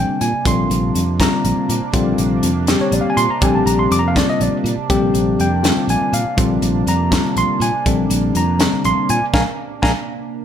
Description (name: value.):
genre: electric jazz fusion.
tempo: 81 BPM (dotted quarters).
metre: 6/8.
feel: straight.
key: Bb mixolydian.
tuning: A4 = 441 Hz.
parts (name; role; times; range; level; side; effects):
tine electric piano; accompaniment; 0.0-9.9 s; D3 to D6; -17 LUFS; left 2 dB; none.
chorused pulse-width pad; sustained chords; 0.0-10.4 s; C3 to D4; -25 LUFS; right 6 dB; none.
fretless electric bass; bass; 0.0-9.9 s; Bb1 to Bb2; -20 LUFS; right 1 dB; none.
crisp fusion drum kit; drums; 0.2-9.9 s; hi-hat, kick drum, snare drum; -20 LUFS; equal; none.
room: light reverb.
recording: none.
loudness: -14 LUFS.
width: side -9 dB against mid.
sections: 0.0-10.4 A section.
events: band accent 9.3-10.4.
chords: 0.0 Bb9.